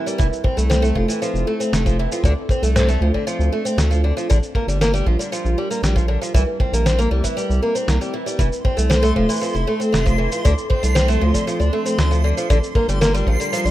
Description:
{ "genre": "folktronica", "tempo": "117 BPM", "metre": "4/4", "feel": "straight", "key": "F major", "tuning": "A4 = 435 Hz", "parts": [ { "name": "warbly tape-like pad", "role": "sustained chords", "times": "0.0-13.7 s", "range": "F3 to Bb4", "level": "-29 LUFS", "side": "left 1 dB", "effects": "chorus, built-in reverb, vintage 12-bit sampler grit" }, { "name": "picked twelve-string acoustic guitar", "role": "arpeggios", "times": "0.0-13.7 s", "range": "D3 to E4", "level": "-21 LUFS", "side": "equal", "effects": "tape echo" }, { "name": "electronic shaker and snare drum", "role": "drums", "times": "0.1-13.7 s", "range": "none", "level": "-25 LUFS", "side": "equal", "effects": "small room ambience" }, { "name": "round analog bass", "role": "bass", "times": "0.2-13.7 s", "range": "F1 to D2", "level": "-18 LUFS", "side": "equal", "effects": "none" }, { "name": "kick drum", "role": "drums", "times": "0.2-13.4 s", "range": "none", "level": "-20 LUFS", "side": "equal", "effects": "small room ambience" }, { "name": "backwards swelling texture", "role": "texture", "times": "8.7-13.7 s", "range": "C6", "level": "-29 LUFS", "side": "equal", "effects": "built-in reverb" } ], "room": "small room ambience", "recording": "rough home demo mix", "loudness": "-16 LUFS", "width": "side -14 dB against mid", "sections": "0.0-13.7 A section", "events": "none", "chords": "0.2 Fmaj7; 2.2 Dm7; 4.3 Bb6; 6.3 C7; 8.4 Fmaj7; 10.4 Dm7; 12.5 Bb6", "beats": "| 0.19 0.70 1.22 1.73 | 2.24 2.75 3.27 3.78 | 4.29 4.80 5.32 5.83 | 6.34 6.86 7.37 7.88 | 8.39 8.91 9.42 9.93 | 10.45 10.96 11.47 11.98 | 12.50 13.01 13.52" }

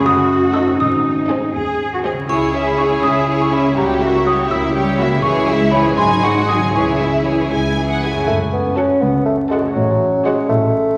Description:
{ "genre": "cinematic, playful, whimsical film cue", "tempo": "81 BPM (dotted quarters)", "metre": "6/8", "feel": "straight", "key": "C# minor", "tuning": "A4 = 440 Hz", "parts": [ { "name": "xylophone with soft rubber mallets", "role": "melody", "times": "0.0-8.0 s", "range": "A#5 to E6", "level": "-22 LUFS", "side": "equal", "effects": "none" }, { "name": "concert harp", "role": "arpeggios", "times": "0.0-11.0 s", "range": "F#2 to A4", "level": "-24 LUFS", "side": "equal", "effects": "none" }, { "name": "rich studio cello section", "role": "bass", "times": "0.0-11.0 s", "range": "C#2 to G#4", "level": "-24 LUFS", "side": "equal", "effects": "none" }, { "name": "warm studio double bass section", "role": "bass", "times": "0.0-11.0 s", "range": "F#1 to D#2", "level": "-26 LUFS", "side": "equal", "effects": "none" }, { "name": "rich studio violin section", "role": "melody", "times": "0.5-10.4 s", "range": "C#5 to G#5", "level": "-27 LUFS", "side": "equal", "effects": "none" }, { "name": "warm studio violin section", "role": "second line", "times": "0.5-10.4 s", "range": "E4 to C#5", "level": "-26 LUFS", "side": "equal", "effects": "none" }, { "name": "dark studio viola section", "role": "accompaniment", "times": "0.5-10.4 s", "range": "E3 to F#4", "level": "-24 LUFS", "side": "equal", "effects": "none" }, { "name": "triangle", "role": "percussion", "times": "2.3-3.2 s", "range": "none", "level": "-42 LUFS", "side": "equal", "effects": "none" }, { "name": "mellow bassoon", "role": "accompaniment", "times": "8.3-11.0 s", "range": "F#3 to C#4", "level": "-19 LUFS", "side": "equal", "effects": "none" } ], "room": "wet scoring stage reverb, RT60 1.9 s", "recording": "vinyl crackle", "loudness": "-16 LUFS", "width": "mono", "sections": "0.0-8.3 A section; 8.3-11.0 B section", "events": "none", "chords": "0.1 D#dim/F#; 0.8 G#; 2.3 C#m; 3.8 C#dim7; 5.2 C#m; 6.0 G#5; 6.7 C#m; 8.3 F#m; 9.8 F#m/A", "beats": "0.05 | 0.79 1.54 | 2.29 3.04 | 3.77 4.51 | 5.24 5.98 | 6.75 7.52 | 8.28 9.02 | 9.76 10.50" }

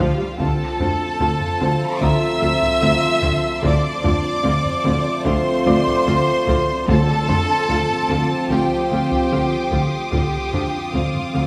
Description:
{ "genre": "cinematic, suspense film score", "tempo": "74 BPM", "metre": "4/4", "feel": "straight", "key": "D minor", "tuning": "A4 = 440 Hz", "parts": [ { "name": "warm studio violin section", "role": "melody", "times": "0.0-11.5 s", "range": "F5 to E6", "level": "-28 LUFS", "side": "equal", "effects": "none" }, { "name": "rich studio violin section", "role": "second line", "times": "0.0-11.5 s", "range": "F4 to E5", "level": "-26 LUFS", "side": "equal", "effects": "none" }, { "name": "rich studio viola section", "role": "accompaniment", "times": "0.0-11.4 s", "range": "F3 to G4", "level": "-30 LUFS", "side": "equal", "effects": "none" }, { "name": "icy glass pad", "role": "sustained chords", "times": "0.0-11.5 s", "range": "F4 to C6", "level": "-33 LUFS", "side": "equal", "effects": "chorus, built-in reverb" }, { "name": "rubbery square bass", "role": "riff", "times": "0.0-11.5 s", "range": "D3 to D4", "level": "-28 LUFS", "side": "equal", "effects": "none" }, { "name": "clear studio double bass section", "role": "bass", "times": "0.0-11.4 s", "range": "D2", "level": "-30 LUFS", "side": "equal", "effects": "none" }, { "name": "rich studio cello section", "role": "bass", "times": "0.0-11.4 s", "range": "D2", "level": "-29 LUFS", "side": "equal", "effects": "none" }, { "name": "dark trombone section", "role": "sustained chords", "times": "0.4-11.5 s", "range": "F3 to C4", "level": "-32 LUFS", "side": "equal", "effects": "none" }, { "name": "mellow French horn section", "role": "sustained chords", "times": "0.4-11.5 s", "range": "C4 to F4", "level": "-29 LUFS", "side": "equal", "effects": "none" }, { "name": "taiko ensemble", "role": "drums", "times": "0.4-11.5 s", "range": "none", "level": "-30 LUFS", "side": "equal", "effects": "none" }, { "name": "rich studio violin section", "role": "texture", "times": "0.4-11.5 s", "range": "A5 to Eb6", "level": "-37 LUFS", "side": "equal", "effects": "none" }, { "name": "felt-muted upright piano", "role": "texture", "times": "2.0-11.5 s", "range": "D5 to D6", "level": "-34 LUFS", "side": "equal", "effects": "none" }, { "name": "timpani", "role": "percussion", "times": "6.9-8.1 s", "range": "D3", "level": "-28 LUFS", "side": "equal", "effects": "none" } ], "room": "wet scoring stage reverb, RT60 1.5 s", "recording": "none", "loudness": "-19 LUFS", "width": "mono", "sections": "0.0-11.5 A section", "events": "none", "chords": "0.4 Dm7; 6.9 Fsus2/D", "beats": "| 0.40 1.21 2.02 2.83 | 3.64 4.45 5.26 6.07 | 6.88 7.69 8.50 9.31 | 10.13 10.94" }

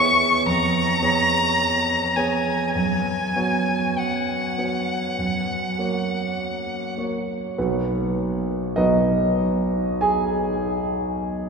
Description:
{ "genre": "classical, romantic duo for violin and grand piano", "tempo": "46-54 BPM", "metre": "4/4", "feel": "rubato", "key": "B major", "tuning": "A4 = 440 Hz", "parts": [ { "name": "warm violin", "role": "melody", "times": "0.0-7.0 s", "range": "F#5 to C#6", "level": "-22 LUFS", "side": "left 2 dB", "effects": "none" }, { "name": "clear concert grand piano", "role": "accompaniment", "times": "0.0-11.5 s", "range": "B1 to G#5", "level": "-22 LUFS", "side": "right 2 dB", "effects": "none" } ], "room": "wet cathedral reverb, RT60 5.2 s", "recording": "recorded in a church or concert hall", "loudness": "-20 LUFS", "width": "side -5 dB against mid", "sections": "0.0-7.6 A section; 7.6-11.5 B section", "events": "none", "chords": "0.4 C#7/E#; 2.7 F#sus4; 5.2 F#; 7.6 B", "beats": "0.44 1.58 | 2.75 3.96 5.18 6.36 | 7.57 8.76 10.02 11.22" }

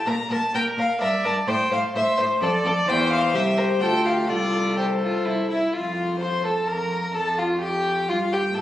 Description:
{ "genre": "quick classical-period movement for string quartet", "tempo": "128 BPM", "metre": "3/4", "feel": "straight", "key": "F major", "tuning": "A4 = 440 Hz", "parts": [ { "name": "rich violin", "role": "melody", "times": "0.0-8.6 s", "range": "A4 to C6", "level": "-25 LUFS", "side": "left 2 dB", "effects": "none" }, { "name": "warm violin", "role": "second line", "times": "0.1-8.6 s", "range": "E4 to C5", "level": "-27 LUFS", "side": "left 1 dB", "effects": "none" }, { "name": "rich cello", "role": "bass", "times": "0.1-8.6 s", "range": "C2 to Bb2", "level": "-27 LUFS", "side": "right 1 dB", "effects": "none" }, { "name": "warm viola", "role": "accompaniment", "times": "0.5-8.6 s", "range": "E4 to D5", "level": "-26 LUFS", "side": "right 1 dB", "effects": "none" } ], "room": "wet recital hall reverb, RT60 1.5 s", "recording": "recorded on a phone in the room, club reverb", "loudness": "-20 LUFS", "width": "side -13 dB against mid", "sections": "0.0-5.8 A section; 5.8-8.6 B section", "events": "none", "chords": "0.1 Gm9/Bb (rootless); 1.0 Edim; 1.5 Am; 2.4 Dm; 2.9 C/E; 3.8 Dm; 4.3 F/C; 5.3 C; 5.8 F; 7.2 Fadd9", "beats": "| 0.06 0.54 1.01 | 1.47 1.94 2.41 | 2.88 3.34 3.81 | 4.29 4.78 5.27 | 5.75 6.22 6.69 | 7.15 7.62 8.09 | 8.56" }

